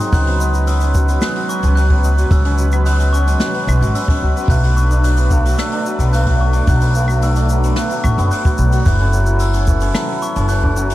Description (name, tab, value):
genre	folktronica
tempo	110 BPM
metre	4/4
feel	straight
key	unclear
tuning	A4 = 445 Hz
part	glockenspiel with rubber mallets	second line	0.0-10.6 s	A5 to F#6	-23 LUFS	equal	vintage 12-bit sampler grit, tape echo
part	warm analog pad	sustained chords	0.0-10.9 s	F#3 to B4	-26 LUFS	right 2 dB	chorus, tremolo, vintage 12-bit sampler grit
part	hammered dulcimer	arpeggios	0.0-10.9 s	D#3 to F#4	-22 LUFS	left 2 dB	ping-pong delay
part	jazz brush drum kit	drums	0.0-10.9 s	claves, hi-hat, shaker, snare drum	-27 LUFS	left 2 dB	none
part	upright bass	bass	0.1-10.9 s	F#1 to C#2	-14 LUFS	equal	none
part	kick drum	drums	0.1-10.7 s	none	-17 LUFS	equal	none
room	studio reverb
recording	dark, warm production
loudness	-13 LUFS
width	side -15 dB against mid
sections	0.0-10.9 A section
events	none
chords	0.1 C#7sus4; 4.5 Bm7; 8.9 F#m7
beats	| 0.13 0.68 1.22 1.77 | 2.31 2.86 3.40 3.95 | 4.50 5.04 5.58 6.13 | 6.68 7.22 7.77 8.31 | 8.86 9.40 9.95 10.49